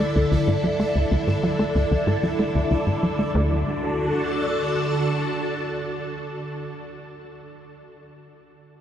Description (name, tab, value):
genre	ambient, sequencer-driven space music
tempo	94 BPM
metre	4/4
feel	straight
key	D major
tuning	A4 = 439 Hz
part	phased string machine	sustained chords	0.0-6.7 s	D3 to A5	-24 LUFS	equal	ensemble chorus, phaser
part	tight sequencer bass	riff	0.0-3.6 s	D2 to A3	-23 LUFS	equal	tape echo
part	pulsing gated texture	texture	0.0-3.4 s	D5	-38 LUFS	left 1 dB	none
room	wet huge ambient reverb, RT60 7.3 s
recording	in a vast, echoing space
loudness	-21 LUFS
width	side -10 dB against mid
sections	0.0-3.3 A section; 3.3-5.9 B section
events	filter sweep on analog synth bass 0.0-3.3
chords	0.0 Dsus2; 3.3 D